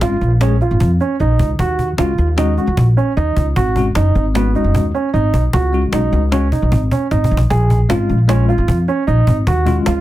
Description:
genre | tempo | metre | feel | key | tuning
progressive instrumental, band music in an uneven meter | 152 BPM | 5/4 | straight | unclear | A4 = 437 Hz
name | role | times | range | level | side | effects
tine electric piano | accompaniment | 0.0-10.0 s | G#3 to G#4 | -20 LUFS | left 6 dB | fast tremolo
dark grand piano | arpeggios | 0.0-10.0 s | B3 to G#4 | -19 LUFS | right 4 dB | none
upright bass | bass | 0.0-10.0 s | F#1 to E#2 | -15 LUFS | equal | none
cajon | drums | 0.0-10.0 s | none | -21 LUFS | equal | none
room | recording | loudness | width
light reverb | dense, heavily limited modern master | -13 LUFS | side -14 dB against mid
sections
0.0-10.0 A section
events
drum fill 7.1-7.5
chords
0.0 A#m7; 1.6 D#m7; 3.6 G#m7; 5.5 C#sus4; 7.5 A#m7; 9.5 D#m7

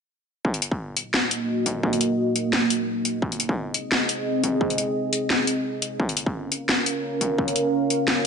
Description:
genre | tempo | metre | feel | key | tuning
half-time drum and bass | 173 BPM | 4/4 | swing 55% on 16ths, half-time | Eb dorian | A4 = 440 Hz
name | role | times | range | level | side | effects
dark analog pad | sustained chords | 1.3-8.3 s | Bb3 to F5 | -24 LUFS | right 1 dB | chorus, sidechain pumping
electronic kick drum | drums | 0.4-7.5 s | none | -27 LUFS | equal | distortion, high-pass filter on kick
drum and bass drum kit | drums | 0.5-8.2 s | hi-hat, snare drum | -23 LUFS | left 1 dB | none
room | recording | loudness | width
moderate echo chamber reverb, RT60 1.9 s | nothing above 10.4 kHz | -21 LUFS | side -6 dB against mid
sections
0.4-8.3 A section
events
none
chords
0.4 Ebm; 3.2 Ab; 6.0 Bbm

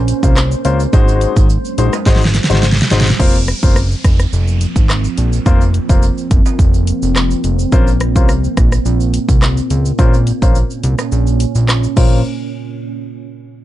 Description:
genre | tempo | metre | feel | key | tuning
dancehall | 106 BPM | 4/4 | straight | Bb minor | A4 = 440 Hz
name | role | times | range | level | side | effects
deep dark ambient pad | sustained chords | 0.0-12.2 s | Bb2 to C5 | -21 LUFS | right 2 dB | chorus, built-in reverb, sidechain pumping, low-pass filter
fat analog bass | bass | 0.0-12.2 s | F1 to Db2 | -14 LUFS | equal | none
pop drum kit | drums | 0.1-12.1 s | crash cymbal, handclaps, hi-hat, kick drum, rim click, shaker, snare drum | -13 LUFS | equal | none
tube shaker and timbales | percussion | 0.1-12.2 s | none | -32 LUFS | right 19 dB | none
warm grand piano | accompaniment | 0.2-12.2 s | Ab3 to C5 | -19 LUFS | left 5 dB | sidechain pumping, low-pass filter
downlifter | sound effects | 3.2-7.7 s | none | -29 LUFS | right 2 dB | none
room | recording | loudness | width
little or no reverb | nothing above 10.4 kHz | -11 LUFS | side -14 dB against mid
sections
0.0-3.2 A section; 3.2-12.3 B section; 12.3-13.6 C section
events
drum fill 2.1-3.2; filter sweep 3.2-12.3; kick muted 11.1-12.3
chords
0.0 Bbmadd9; 0.9 Ab7; 3.2 Fsus4; 7.7 Bbmadd9; 12.3 N.C.

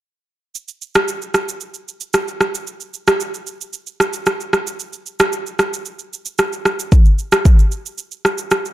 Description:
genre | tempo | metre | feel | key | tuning
afrobeats | 113 BPM | 4/4 | straight | none | none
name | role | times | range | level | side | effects
afro-pop drum kit | drums | 0.5-8.7 s | kick drum, rim click, shaker | -15 LUFS | equal | none
room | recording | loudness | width
light reverb, digital ambience | dark, warm production | -15 LUFS | side -15 dB against mid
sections
0.5-8.7 A section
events
break 8.0-8.7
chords
none

